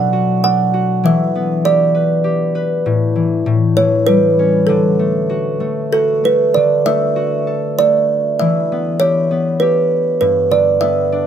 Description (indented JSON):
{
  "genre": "children's music, lullaby",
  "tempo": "98 BPM",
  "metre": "3/4",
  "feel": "rubato",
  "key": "D major",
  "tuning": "A4 = 440 Hz",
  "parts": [
    { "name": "kalimba", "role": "melody", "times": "0.0-11.3 s", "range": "A4 to F#5", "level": "-14 LUFS", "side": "right 3 dB", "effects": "none" },
    { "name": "concert harp", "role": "accompaniment", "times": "0.0-11.3 s", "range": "G2 to B4", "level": "-17 LUFS", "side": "left 4 dB", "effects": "none" }
  ],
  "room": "moderate studio reverb, RT60 0.6 s",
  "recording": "none",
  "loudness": "-12 LUFS",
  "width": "side -9 dB against mid",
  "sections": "0.0-6.6 A section; 6.6-11.3 B section",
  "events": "none",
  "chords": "0.0 Bm; 1.0 Em7; 2.9 A5; 3.5 A7; 4.7 D; 8.4 Em; 10.2 G"
}